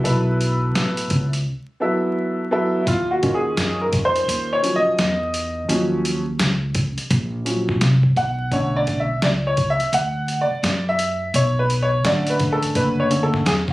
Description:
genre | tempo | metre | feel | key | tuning
hip hop, jazz-hop | 85 BPM | 4/4 | swing 62% on 16ths | unclear | A4 = 440 Hz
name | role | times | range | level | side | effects
warm upright piano | accompaniment | 0.0-13.7 s | D3 to F#5 | -20 LUFS | equal | none
upright bass | bass | 0.0-13.7 s | F#1 to Gb2 | -22 LUFS | equal | none
boom bap sampler-style drum kit | drums | 0.1-13.7 s | hi-hat, kick drum, snare drum | -23 LUFS | equal | overdrive
room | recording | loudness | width
light reverb | recorded on a phone in the room, studio ambience, vinyl crackle | -18 LUFS | side -18 dB against mid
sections
0.0-2.9 A section; 2.9-13.7 B section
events
silent gap 1.5-2.9; upright piano solo 2.9-13.7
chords
0.0 B5; 2.9 Ebm9; 8.2 Bm9

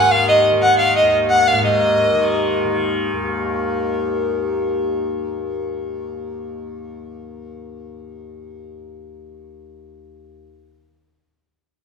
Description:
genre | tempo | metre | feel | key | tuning
indian classical, Hindustani | 178 BPM | 3/4 | straight | unclear | A4 = 440 Hz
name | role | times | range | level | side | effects
rich violin | melody | 0.0-2.6 s | Eb5 to Gb5 | -14 LUFS | equal | none
tanpura | drone | 0.0-10.3 s | Eb2 to Eb3 | -22 LUFS | left 2 dB | none
room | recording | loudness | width
wet recital hall reverb, RT60 1.3 s | recorded in a church or concert hall | -16 LUFS | side -6 dB against mid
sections
0.0-1.6 A section; 1.6-3.7 B section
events
none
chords
none

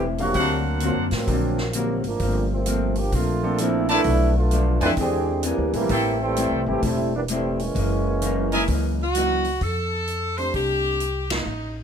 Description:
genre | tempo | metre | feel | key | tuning
jazz, big band swing | 130 BPM | 4/4 | swing 65% on 8ths | F major | A4 = 442 Hz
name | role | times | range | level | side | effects
dark trombone section | second line | 0.0-9.2 s | C3 to B4 | -25 LUFS | right 3 dB | none
vintage hollow-body jazz guitar | accompaniment | 0.0-9.5 s | Gb2 to G#4 | -28 LUFS | left 4 dB | none
upright bass | bass | 0.0-11.8 s | E1 to A2 | -25 LUFS | equal | none
warm concert grand piano | accompaniment | 0.2-11.0 s | E3 to G5 | -29 LUFS | right 1 dB | none
swinging big-band drum kit | drums | 0.2-11.4 s | hi-hat, kick drum, ride cymbal, snare drum | -31 LUFS | equal | none
clear trumpet section | stabs | 0.3-1.1, 3.9-8.6 s | D4 to A5 | -25 LUFS | equal | none
bright saxophone section | melody | 9.0-11.8 s | Eb4 to C5 | -24 LUFS | equal | none
room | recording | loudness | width
light reverb | none | -20 LUFS | side -8 dB against mid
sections
0.0-9.6 A section; 9.6-11.8 B section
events
trombone section solo 0.0-9.6; band accent 11.2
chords
0.3 D7alt; 2.2 Gm11; 4.0 Bm7b5; 5.0 E7alt; 5.9 Am7; 7.8 Gb13; 9.6 F69

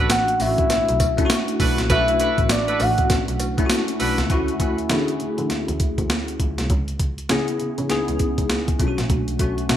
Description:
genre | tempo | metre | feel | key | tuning
R&B, new jack swing | 100 BPM | 4/4 | swing 61% on 16ths | B dorian | A4 = 440 Hz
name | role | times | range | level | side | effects
bell-like tine electric piano | accompaniment | 0.0-9.8 s | A3 to G#4 | -24 LUFS | left 2 dB | ensemble chorus
warm horn section | stabs | 0.0-4.2 s | D4 to B4 | -26 LUFS | right 4 dB | digital delay
rich double bass | bass | 0.0-9.8 s | A1 to D3 | -26 LUFS | equal | none
soft octave-layered synth lead | melody | 0.1-3.4 s | D5 to F#5 | -22 LUFS | left 1 dB | chorus
breakbeat sampler-style drum kit | drums | 0.1-9.8 s | hi-hat, kick drum, snare drum, tambourine | -22 LUFS | equal | gated reverb
cowbell | percussion | 0.1-3.9 s | none | -37 LUFS | right 6 dB | none
room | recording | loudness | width
moderate plate reverb, RT60 1.9 s, digital ambience | bright 1980s-style digital production | -18 LUFS | side -10 dB against mid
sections
0.0-4.3 A section; 4.3-9.8 B section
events
none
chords
0.0 Bm7; 4.3 Dmaj7; 6.7 C#m7; 8.8 Bm7

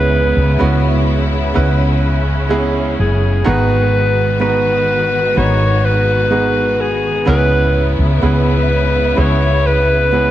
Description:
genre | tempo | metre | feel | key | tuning
pop ballad | 63 BPM | 4/4 | straight | unclear | A4 = 439 Hz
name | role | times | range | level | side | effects
breathy alto saxophone | melody | 0.0-10.3 s | G#4 to C#5 | -17 LUFS | left 1 dB | ping-pong delay
clear baby grand piano | accompaniment | 0.0-10.3 s | G#2 to B4 | -19 LUFS | right 3 dB | none
rich studio string section | sustained chords | 0.0-10.3 s | C#3 to F#4 | -21 LUFS | left 1 dB | none
woody fretless electric bass | bass | 0.0-10.3 s | F#1 to C#2 | -16 LUFS | equal | none
room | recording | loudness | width
light reverb, studio ambience | none | -12 LUFS | side -13 dB against mid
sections
0.0-10.3 A section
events
none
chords
0.0 C#m7; 3.5 G#m7; 7.3 C#m7

